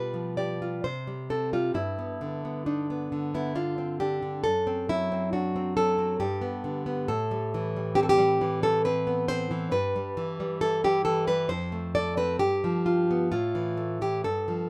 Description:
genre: romantic piece for solo classical guitar.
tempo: 68 BPM.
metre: 3/4.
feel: uneven beats, rubato.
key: unclear.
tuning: A4 = 440 Hz.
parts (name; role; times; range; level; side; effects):
nylon-string guitar; solo; 0.0-14.7 s; F2 to D5; -28 LUFS; equal; none.
room: light reverb.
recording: rough home demo mix.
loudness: -28 LUFS.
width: mono.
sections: 0.0-14.7 A section.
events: none.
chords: 0.0 G7/B; 0.8 C5; 1.8 G; 4.5 D7/F#; 6.2 G; 7.1 Am7; 9.7 Em/G; 11.5 F; 12.4 G7; 13.3 A5.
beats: 0.83 | 1.76 2.68 3.57 | 4.45 5.32 6.21 | 7.09 7.97 8.84 | 9.71 10.60 11.48 | 12.39 13.30 14.25.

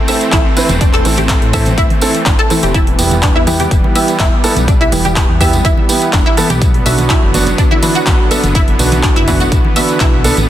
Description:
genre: progressive house.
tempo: 124 BPM.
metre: 4/4.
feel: straight.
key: unclear.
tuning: A4 = 440 Hz.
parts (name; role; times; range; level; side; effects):
supersaw pad; sustained chords; 0.0-10.5 s; D3 to C4; -19 LUFS; equal; sidechain pumping.
analog pluck; arpeggios; 0.1-10.0 s; E3 to E5; -18 LUFS; left 1 dB; ensemble chorus, sidechain pumping, dub echo.
dark grand piano; stabs; 0.1-10.3 s; B3 to B4; -17 LUFS; right 3 dB; sidechain pumping, dub echo.
big-room dance drum kit; drums; 0.1-10.5 s; handclaps, hi-hat; -19 LUFS; equal; none.
tambourine; percussion; 0.1-10.5 s; none; -25 LUFS; right 1 dB; none.
fat analog bass; bass; 0.3-10.5 s; E1 to A2; -17 LUFS; equal; sidechain pumping.
electronic kick drum; drums; 0.3-10.1 s; none; -13 LUFS; equal; none.
congas; percussion; 0.3-10.5 s; none; -24 LUFS; right 3 dB; none.
room: light reverb, digital ambience.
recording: dense, heavily limited modern master.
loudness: -9 LUFS.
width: side -12 dB against mid.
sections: 0.0-10.5 A section.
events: none.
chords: 0.0 Am; 2.7 Em; 6.6 Bm.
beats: 0.33 | 0.81 1.29 1.78 2.26 | 2.75 3.23 3.71 4.20 | 4.68 5.16 5.65 6.13 | 6.62 7.10 7.58 8.07 | 8.55 9.04 9.52 10.00 | 10.49.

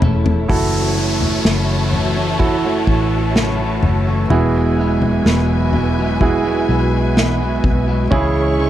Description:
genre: pop ballad.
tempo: 63 BPM.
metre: 4/4.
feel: straight.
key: unclear.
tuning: A4 = 439 Hz.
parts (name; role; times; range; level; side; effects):
clear grand piano; accompaniment; 0.0-8.7 s; C#3 to A4; -21 LUFS; right 5 dB; none.
warm studio string section; sustained chords; 0.0-8.7 s; C#3 to C#6; -25 LUFS; left 1 dB; none.
electric guitar at the edge of break-up; arpeggios; 0.0-8.7 s; E2 to A4; -20 LUFS; left 1 dB; wide subtle chorus.
vintage muted fingered electric bass; bass; 0.0-8.7 s; E1 to C#2; -20 LUFS; equal; none.
unplugged drum kit; drums; 0.0-8.3 s; kick drum, snare drum, toms; -19 LUFS; left 1 dB; none.
downlifter; sound effects; 0.5-8.1 s; none; -28 LUFS; left 1 dB; none.
room: light reverb, small room ambience.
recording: dark, warm production.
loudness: -14 LUFS.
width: side -12 dB against mid.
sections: 0.5-8.7 A section.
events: drum fill 0.0-0.5.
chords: 0.0 A; 0.5 F#m7; 4.3 Eadd9; 8.1 C#m.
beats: | 0.50 1.45 2.40 3.36 | 4.31 5.26 6.21 7.17 | 8.12.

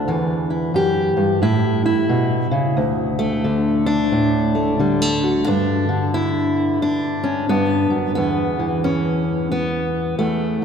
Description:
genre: folk, solo fingerstyle acoustic guitar.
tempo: 89 BPM.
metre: 4/4.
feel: swing 62% on 8ths.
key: unclear.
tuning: A4 = 439 Hz.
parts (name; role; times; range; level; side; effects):
fingerpicked steel-string acoustic guitar; solo; 0.0-10.6 s; D2 to G4; -17 LUFS; equal; none.
room: wet cathedral reverb, RT60 4.6 s.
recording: recorded in a church or concert hall.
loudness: -17 LUFS.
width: side -7 dB against mid.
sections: 0.0-5.5 A section; 5.5-10.6 B section.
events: none.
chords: 0.1 Em; 1.4 A; 2.8 D5; 5.5 G; 8.2 E5.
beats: | 0.07 0.75 1.43 2.10 | 2.78 3.45 4.13 4.80 | 5.48 6.15 6.83 7.50 | 8.17 8.85 9.52 10.20.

